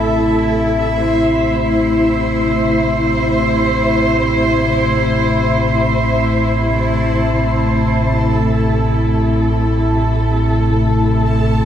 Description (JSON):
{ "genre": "dark ambient drone", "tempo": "free time", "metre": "none", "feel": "none", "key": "A minor", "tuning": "A4 = 439 Hz", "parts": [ { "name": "dark chamber cello section", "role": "sustained chords", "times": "0.0-11.7 s", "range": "C3 to C5", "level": "-16 LUFS", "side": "equal", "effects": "none" }, { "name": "deep rumbling drone", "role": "drone", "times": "0.0-11.7 s", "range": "A1 to A2", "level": "-18 LUFS", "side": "equal", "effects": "built-in reverb, lush chorus" }, { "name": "bubbling stepped-filter texture", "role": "texture", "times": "0.0-11.7 s", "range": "E4 to A5", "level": "-20 LUFS", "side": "left 1 dB", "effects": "chorus, built-in reverb" } ], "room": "wet echo chamber reverb, RT60 2.3 s", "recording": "none", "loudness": "-13 LUFS", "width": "side -9 dB against mid", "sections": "0.0-11.7 A section", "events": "none", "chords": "0.0 Am" }